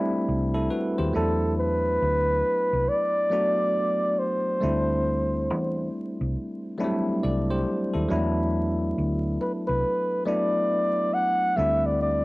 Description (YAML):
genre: R&B, neo-soul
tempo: 69 BPM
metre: 4/4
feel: swing 63% on 16ths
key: E minor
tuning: A4 = 440 Hz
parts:
  - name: bell-like tine electric piano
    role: accompaniment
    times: 0.0-12.2 s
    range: F#3 to D5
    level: -27 LUFS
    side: equal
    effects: medium stereo tremolo, cassette tape
  - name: hollow-body short-scale fingered electric bass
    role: bass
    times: 0.3-12.2 s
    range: C2 to E2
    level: -28 LUFS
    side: equal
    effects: transformer saturation
  - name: breathy flugelhorn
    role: melody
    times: 1.2-12.2 s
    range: A4 to F#5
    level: -24 LUFS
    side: equal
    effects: cassette tape
room: moderate spring reverb, RT60 1.7 s, small room ambience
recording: home recording on cassette, vinyl crackle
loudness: -22 LUFS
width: side -21 dB against mid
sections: 0.0-12.2 A section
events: none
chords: 0.0 D9sus4; 1.1 E9sus4; 4.6 D9sus4; 8.1 E9sus4; 11.6 D9sus4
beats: 0.26 | 1.13 2.00 2.87 3.74 | 4.61 5.48 6.35 7.22 | 8.09 8.96 9.82 10.70 | 11.56